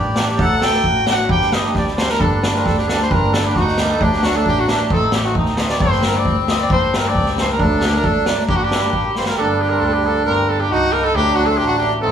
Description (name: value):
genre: klezmer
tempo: 134 BPM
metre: 2/4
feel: straight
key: G harmonic minor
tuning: A4 = 440 Hz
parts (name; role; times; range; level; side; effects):
- clear cornet; melody; 0.0-12.1 s; Eb4 to G5; -20 LUFS; left 1 dB; none
- accordion; second line; 0.0-12.1 s; Bb3 to A4; -21 LUFS; right 1 dB; none
- cimbalom; accompaniment; 0.0-12.1 s; F#3 to Eb4; -24 LUFS; right 3 dB; none
- dark double bass; bass; 0.0-12.1 s; G1 to D2; -23 LUFS; equal; none
- street-band drum kit; drums; 0.2-9.4 s; kick drum, snare drum; -19 LUFS; equal; none
room: wet studio reverb, RT60 0.6 s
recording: band playing live in one room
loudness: -14 LUFS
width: side -8 dB against mid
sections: 0.0-2.2 A section; 2.2-9.4 B section; 9.4-12.1 B section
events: cornet solo 0.0-2.2; drum fill 9.2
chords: 0.4 D; 1.3 Gm; 4.0 D; 4.9 Adim; 5.8 Gm; 7.6 D; 8.5 Gm; 11.2 D